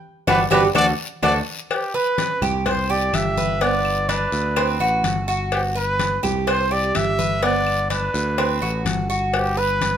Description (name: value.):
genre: latin, Cuban son and guajira.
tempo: 126 BPM.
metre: 4/4.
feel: straight.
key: G major.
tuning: A4 = 440 Hz.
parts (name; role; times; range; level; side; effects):
breathy trumpet; melody; 0.3-10.0 s; G4 to E5; -22 LUFS; equal; none.
Cuban tres; arpeggios; 0.3-10.0 s; B3 to C5; -22 LUFS; right 3 dB; none.
modern bright picked electric bass; bass; 0.3-10.0 s; G1 to D2; -25 LUFS; equal; none.
claves; percussion; 0.3-9.6 s; none; -32 LUFS; left 4 dB; none.
congas; percussion; 0.3-10.0 s; none; -30 LUFS; left 6 dB; none.
cowbell; percussion; 0.3-10.0 s; none; -27 LUFS; left 4 dB; none.
guiro; percussion; 0.3-10.0 s; none; -35 LUFS; left 6 dB; none.
room: moderate studio reverb, RT60 0.9 s.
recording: minimal, uncompressed stereo recording.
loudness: -18 LUFS.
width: side -9 dB against mid.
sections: 0.0-1.7 A section; 1.7-10.0 B section.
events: band accent 0.0-1.7; trumpet solo 0.0-1.7.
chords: 0.0 Gmaj7; 0.8 D; 1.7 G; 2.7 C; 3.6 G; 4.6 D6; 5.5 Gmaj7; 6.5 C; 7.4 G; 8.4 D6; 9.3 Gmaj7.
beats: 0.28 0.75 1.23 | 1.71 2.18 2.66 3.14 | 3.61 4.09 4.57 5.04 | 5.52 6.00 6.47 6.95 | 7.43 7.91 8.38 8.86 | 9.34 9.82.